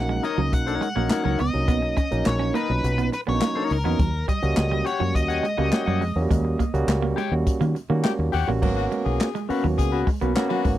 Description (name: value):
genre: funk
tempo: 104 BPM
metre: 4/4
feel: straight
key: unclear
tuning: A4 = 439 Hz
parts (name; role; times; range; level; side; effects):
- nasal lead guitar with a parked wah; melody; 0.0-8.0 s; A#4 to F#5; -29 LUFS; left 2 dB; overdrive, tube saturation
- barky tine electric piano; stabs; 0.0-10.8 s; A#2 to F#4; -27 LUFS; right 3 dB; none
- fingered electric bass; bass; 0.0-10.8 s; G#1 to D#3; -25 LUFS; equal; none
- semi-hollow electric guitar; riff; 0.1-10.8 s; F#3 to C#4; -30 LUFS; right 8 dB; none
- clean electric guitar; accompaniment; 0.2-10.7 s; C#4 to G5; -27 LUFS; left 8 dB; none
- swinging big-band drum kit; drums; 0.2-10.8 s; crash cymbal, handclaps, hi-hat, kick drum, snare drum; -25 LUFS; left 1 dB; none
- edgy tenor saxophone; second line; 8.0-10.7 s; F#4 to G#4; -29 LUFS; left 13 dB; none
room: little or no reverb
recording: dry, close 1970s-style studio recording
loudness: -20 LUFS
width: side -13 dB against mid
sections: 0.0-8.6 A section; 8.6-10.8 B section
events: band accent 6.3-8.6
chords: 0.0 Bmaj9; 4.0 D#7#9; 8.6 G#m11